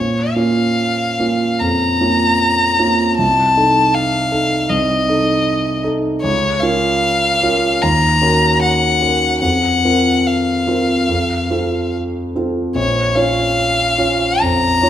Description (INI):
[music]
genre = classical, romantic duo for violin and grand piano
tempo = 68-80 BPM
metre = 4/4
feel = rubato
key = Bb minor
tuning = A4 = 438 Hz
[part]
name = rich violin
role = melody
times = 0.0-14.9 s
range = Db5 to Bb5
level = -16 LUFS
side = left 2 dB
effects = none
[part]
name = warm concert grand piano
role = accompaniment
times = 0.0-14.9 s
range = Bb1 to Db5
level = -16 LUFS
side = right 1 dB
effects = none
[sound]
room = wet recital hall reverb, RT60 1.4 s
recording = minimal, uncompressed stereo recording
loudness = -13 LUFS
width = side -10 dB against mid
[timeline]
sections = 0.0-14.9 A section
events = none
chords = 0.0 Bbm; 3.2 Adim/C; 6.2 Bbm/Db; 7.8 Ebm7; 9.4 Fsus4; 11.1 F; 12.8 Bbm